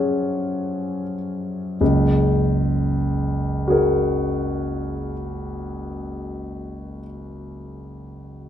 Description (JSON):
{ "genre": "classical, impressionist solo piano", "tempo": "29-34 BPM (dotted quarters)", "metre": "9/8", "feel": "rubato", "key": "F# major", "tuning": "A4 = 440 Hz", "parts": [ { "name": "warm concert grand piano", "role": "solo", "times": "0.0-8.5 s", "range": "F#1 to F#5", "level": "-21 LUFS", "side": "equal", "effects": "none" } ], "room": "moderate recital hall reverb, RT60 1.4 s", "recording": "none", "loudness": "-20 LUFS", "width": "side -10 dB against mid", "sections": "0.0-1.8 A section; 1.8-7.3 B section", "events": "slowing down 0.0-1.8", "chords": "0.0 F#sus2; 1.8 F#add9", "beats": "| 1.79 3.67 5.52" }